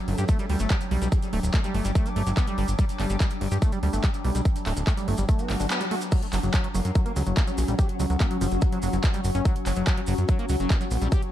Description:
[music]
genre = psychedelic trance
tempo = 144 BPM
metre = 4/4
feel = straight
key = unclear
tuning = A4 = 439 Hz
[part]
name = evolving wavetable pad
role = sustained chords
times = 0.0-11.3 s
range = F#3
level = -35 LUFS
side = left 1 dB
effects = chorus, built-in reverb, sidechain pumping
[part]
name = granular cloud pad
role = texture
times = 0.0-11.3 s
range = C#4 to D6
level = -34 LUFS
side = left 1 dB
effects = built-in reverb, sidechain pumping
[part]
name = formant-sweep wobble bass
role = second line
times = 0.1-1.3, 6.7-9.0 s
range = F#3 to A#3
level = -41 LUFS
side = left 4 dB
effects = lush chorus, sidechain pumping, high-pass filter, digital delay
[part]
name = fat analog bass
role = bass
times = 0.1-11.1 s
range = D1 to G2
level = -25 LUFS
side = equal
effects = none
[part]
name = big-room dance drum kit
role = drums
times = 0.1-11.3 s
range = crash cymbal, handclaps, hi-hat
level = -34 LUFS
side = equal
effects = overdrive, small room ambience
[part]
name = liquid acid bass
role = riff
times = 0.2-11.2 s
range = E#3 to G4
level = -32 LUFS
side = equal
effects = chorus, auto-pan, sidechain pumping, ping-pong delay
[part]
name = maracas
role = percussion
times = 0.2-11.2 s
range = none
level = -42 LUFS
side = right 2 dB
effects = none
[part]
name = electronic kick drum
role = drums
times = 0.3-11.2 s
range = none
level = -23 LUFS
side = equal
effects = overdrive, small room ambience
[part]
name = swell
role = sound effects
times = 5.4-6.1 s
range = none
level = -37 LUFS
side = left 2 dB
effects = none
[sound]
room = little or no reverb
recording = dark, warm production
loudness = -22 LUFS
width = side -12 dB against mid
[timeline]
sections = 0.0-6.1 A section; 6.1-11.3 B section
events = swell 5.4-6.1; band accent 5.7; drop 6.1-11.3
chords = 0.0 G5; 6.1 F#5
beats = 0.29 0.70 | 1.12 1.54 1.95 2.37 | 2.79 3.20 3.62 4.04 | 4.45 4.87 5.29 5.70 | 6.12 6.54 6.95 7.37 | 7.79 8.20 8.62 9.04 | 9.45 9.87 10.29 10.70 | 11.12

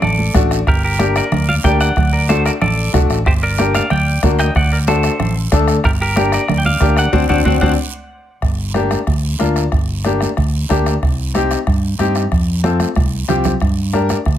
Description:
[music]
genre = latin, cumbia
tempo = 186 BPM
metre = 4/4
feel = straight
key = G harmonic minor, G minor from 8.4 s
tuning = A4 = 440 Hz
[part]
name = clean electric guitar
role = melody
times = 0.0-7.7 s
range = G4 to G5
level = -20 LUFS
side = right 1 dB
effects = spring reverb, slapback echo
[part]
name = fingered electric bass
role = bass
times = 0.0-14.4 s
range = G1 to G2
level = -18 LUFS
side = equal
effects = none
[part]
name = bombo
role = percussion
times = 0.0-14.4 s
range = none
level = -19 LUFS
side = right 1 dB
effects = none
[part]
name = congas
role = percussion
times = 0.0-14.3 s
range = none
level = -23 LUFS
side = right 3 dB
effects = none
[part]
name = guiro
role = percussion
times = 0.0-14.4 s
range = none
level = -30 LUFS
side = right 8 dB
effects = none
[part]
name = bright upright piano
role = accompaniment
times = 0.3-14.2 s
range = A3 to Bb4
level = -18 LUFS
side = left 4 dB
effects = none
[sound]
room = little or no reverb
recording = close, detailed microphones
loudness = -13 LUFS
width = side -11 dB against mid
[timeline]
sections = 0.0-8.4 A section; 8.4-14.4 B section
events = band accent 7.1-8.4; drum fill 12.6-13.6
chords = 0.0 D; 0.7 Gm; 2.0 D; 3.3 Gm; 4.6 D7; 5.8 Gm; 7.1 D7; 8.4 Gm; 11.0 Cm; 12.3 F; 13.6 Gm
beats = 0.03 0.35 | 0.67 0.99 1.32 1.64 | 1.97 2.29 2.61 2.94 | 3.26 3.58 3.91 4.23 | 4.55 4.88 5.20 5.52 | 5.84 6.17 6.49 6.82 | 7.14 7.46 7.79 8.11 | 8.43 8.76 9.08 9.40 | 9.73 10.05 10.38 10.70 | 11.02 11.35 11.67 11.99 | 12.32 12.64 12.97 13.29 | 13.61 13.94 14.26

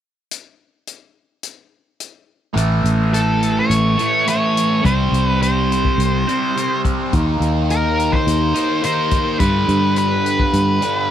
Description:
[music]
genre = psychedelic rock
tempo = 106 BPM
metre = 4/4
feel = straight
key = unclear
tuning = A4 = 440 Hz
[part]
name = vintage drum kit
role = drums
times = 0.3-11.0 s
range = hi-hat, kick drum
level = -24 LUFS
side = left 2 dB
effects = none
[part]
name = fuzz guitar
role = riff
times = 2.5-11.1 s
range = G2 to D#4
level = -19 LUFS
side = equal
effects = distortion, phaser
[part]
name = fingered electric bass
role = bass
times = 2.6-10.8 s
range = A1 to G2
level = -18 LUFS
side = equal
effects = none
[part]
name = octave-fuzz lead guitar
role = melody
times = 3.1-11.1 s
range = A4 to C#5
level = -20 LUFS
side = equal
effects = distortion, tape echo
[sound]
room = studio reverb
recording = 1960s-style stereo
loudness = -15 LUFS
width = side -10 dB against mid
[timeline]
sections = 0.3-2.6 A section; 2.6-11.1 B section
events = none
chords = 0.3 N.C.; 2.6 A; 4.9 C5; 7.1 D#5; 9.4 G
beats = | 0.30 0.87 1.44 2.01 | 2.58 3.15 3.72 4.29 | 4.85 5.42 5.99 6.56 | 7.13 7.70 8.27 8.84 | 9.41 9.97 10.54

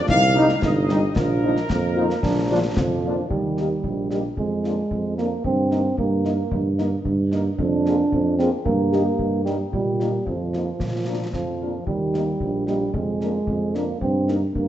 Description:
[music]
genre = military-style march for wind band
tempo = 112 BPM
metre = 2/4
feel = straight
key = Eb major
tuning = A4 = 440 Hz
[part]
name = mellow trumpet section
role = melody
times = 0.0-14.4 s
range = Bb4 to F5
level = -26 LUFS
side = left 1 dB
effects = none
[part]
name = warm euphonium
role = second line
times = 0.1-14.7 s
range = F3 to F4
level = -24 LUFS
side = right 2 dB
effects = none
[part]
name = mellow tuba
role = bass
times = 0.1-14.7 s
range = G1 to Bb2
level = -23 LUFS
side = right 2 dB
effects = none
[part]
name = concert snare drum and concert bass drum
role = drums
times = 0.1-14.7 s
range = none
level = -29 LUFS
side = left 2 dB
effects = none
[part]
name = dark French horn section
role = accompaniment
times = 0.4-14.4 s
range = G3 to Ab4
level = -29 LUFS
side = left 4 dB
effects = none
[part]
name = mellow trombone section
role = sustained chords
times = 0.4-3.1 s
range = F3 to Eb4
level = -26 LUFS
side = equal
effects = none
[sound]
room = wet recital hall reverb, RT60 1.5 s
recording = nothing above 7.9 kHz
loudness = -20 LUFS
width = side -12 dB against mid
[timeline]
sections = 0.0-3.3 A section; 3.3-14.7 B section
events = none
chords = 0.1 Cm; 1.2 Bbsus4; 2.2 Bb; 3.3 Eb; 4.4 Bb7/F; 5.4 Eb/G; 7.6 Bb7/F; 8.7 Eb/G; 9.7 Bbsus4; 10.8 Bb; 11.9 Eb; 12.9 Bb7/F; 14.0 Eb/G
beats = | 0.09 0.63 | 1.16 1.70 | 2.23 2.77 | 3.30 3.83 | 4.37 4.91 | 5.44 5.98 | 6.51 7.05 | 7.58 8.12 | 8.66 9.19 | 9.73 10.26 | 10.80 11.34 | 11.87 12.41 | 12.94 13.48 | 14.01 14.55

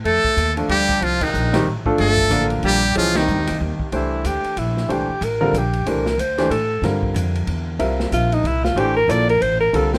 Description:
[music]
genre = modal jazz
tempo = 186 BPM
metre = 3/4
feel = swing 61% on 8ths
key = C mixolydian from 3.9 s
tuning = A4 = 440 Hz
[part]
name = upright bass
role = bass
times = 0.0-10.0 s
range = G1 to A2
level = -25 LUFS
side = equal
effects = none
[part]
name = trumpet with metal mute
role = melody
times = 0.1-3.6 s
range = Eb4 to A4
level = -22 LUFS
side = equal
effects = none
[part]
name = clear alto saxophone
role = second line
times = 0.1-10.0 s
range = Eb3 to D5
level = -23 LUFS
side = equal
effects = none
[part]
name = open jazz drum kit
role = drums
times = 0.1-10.0 s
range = crash cymbal, hi-hat, kick drum, ride cymbal, snare drum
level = -32 LUFS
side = equal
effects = none
[part]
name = clear grand piano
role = accompaniment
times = 0.6-9.9 s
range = D3 to E5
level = -25 LUFS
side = equal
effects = none
[sound]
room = light reverb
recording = none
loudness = -19 LUFS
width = mono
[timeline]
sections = 0.0-3.9 A section; 3.9-10.0 B section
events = band accent 1.2, 3.1; alto saxophone solo 3.9-10.0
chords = 0.0 Cm; 3.9 C13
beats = | 0.05 0.37 0.69 | 1.02 1.34 1.66 | 1.99 2.31 2.63 | 2.96 3.28 3.60 | 3.92 4.25 4.57 | 4.89 5.22 5.54 | 5.86 6.19 6.51 | 6.83 7.16 7.48 | 7.80 8.12 8.45 | 8.77 9.09 9.41 | 9.74

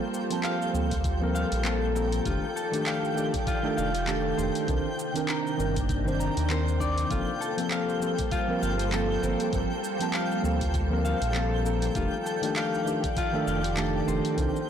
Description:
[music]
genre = sunset chillout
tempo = 99 BPM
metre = 4/4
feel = swing 57% on 16ths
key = G minor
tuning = A4 = 440 Hz
[part]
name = tine electric piano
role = accompaniment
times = 0.0-14.6 s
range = Eb3 to A5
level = -30 LUFS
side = moving between left 6 dB and right 8 dB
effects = auto-pan, ping-pong delay
[part]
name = soft string machine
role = sustained chords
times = 0.0-14.7 s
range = C3 to D5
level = -33 LUFS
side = right 1 dB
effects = ensemble chorus
[part]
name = concert harp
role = arpeggios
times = 0.0-14.7 s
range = F4 to Bb5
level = -32 LUFS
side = left 4 dB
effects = ping-pong delay
[part]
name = twinkling granular texture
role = texture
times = 0.0-14.7 s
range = G5 to G6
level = -37 LUFS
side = right 1 dB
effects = built-in reverb
[part]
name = smooth R&B drum kit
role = drums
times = 0.1-14.7 s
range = handclaps, hi-hat, shaker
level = -35 LUFS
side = equal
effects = none
[part]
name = round analog bass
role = bass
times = 0.7-14.5 s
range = F1 to Eb2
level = -29 LUFS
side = equal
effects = transformer saturation
[part]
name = electronic kick drum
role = drums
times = 0.9-14.5 s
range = none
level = -32 LUFS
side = equal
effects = none
[sound]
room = light reverb, digital ambience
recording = blown-out, overdriven recording, overdrive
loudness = -25 LUFS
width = side -8 dB against mid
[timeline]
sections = 0.0-14.7 A section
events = none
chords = 0.0 Gm11; 2.3 F13; 4.7 Cm9; 7.1 Gm11; 12.0 F13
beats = 0.44 1.05 1.65 | 2.26 2.86 3.47 4.08 | 4.68 5.29 5.89 6.50 | 7.11 7.71 8.32 8.93 | 9.53 10.14 10.74 11.35 | 11.96 12.56 13.17 13.77 | 14.38

